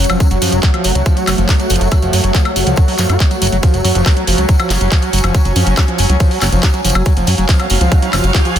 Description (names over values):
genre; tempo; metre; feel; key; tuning
psychedelic trance; 140 BPM; 4/4; straight; F# harmonic minor; A4 = 442 Hz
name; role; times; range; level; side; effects
bubbling stepped-filter texture; sustained chords; 0.0-8.6 s; F#3 to E#5; -21 LUFS; right 2 dB; chorus, built-in reverb, sidechain pumping
screaming distorted acid line; riff; 0.0-8.6 s; E#3 to F#4; -20 LUFS; equal; distortion, chorus, auto-pan, sidechain pumping, digital delay
plucky analog bass; bass; 0.0-8.6 s; F#1 to F#2; -15 LUFS; equal; none
garage drum kit; drums; 0.0-8.6 s; handclaps, hi-hat, woodblock; -19 LUFS; left 1 dB; none
ethereal airy pad; texture; 0.0-8.6 s; F#4 to G#5; -22 LUFS; right 1 dB; ensemble chorus, built-in reverb, sidechain pumping
tambourine; percussion; 0.1-8.6 s; none; -26 LUFS; left 2 dB; none
electronic kick drum; drums; 0.2-8.4 s; none; -12 LUFS; equal; none
formant-sweep wobble bass; second line; 4.0-5.9 s; B3 to E#4; -30 LUFS; equal; none
riser; sound effects; 7.4-8.6 s; none; -24 LUFS; equal; none
room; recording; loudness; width
little or no reverb; dense, heavily limited modern master; -11 LUFS; side -10 dB against mid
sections
0.0-8.6 A section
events
riser 7.4-8.6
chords
0.0 F#5